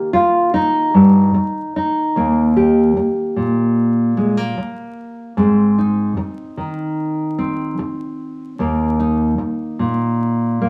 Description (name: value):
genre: folk, solo fingerstyle acoustic guitar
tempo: 74 BPM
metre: 4/4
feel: straight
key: Eb major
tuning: A4 = 440 Hz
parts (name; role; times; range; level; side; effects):
- nylon-string guitar; solo; 0.0-10.7 s; Eb2 to G4; -17 LUFS; equal; none
room: wet studio reverb, RT60 0.8 s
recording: tube saturation, vinyl crackle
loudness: -17 LUFS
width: mono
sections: 0.0-2.2 A section; 2.2-10.7 B section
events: none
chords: 0.0 Cm7 (rootless); 2.2 Eb; 5.4 Ab; 8.6 Eb5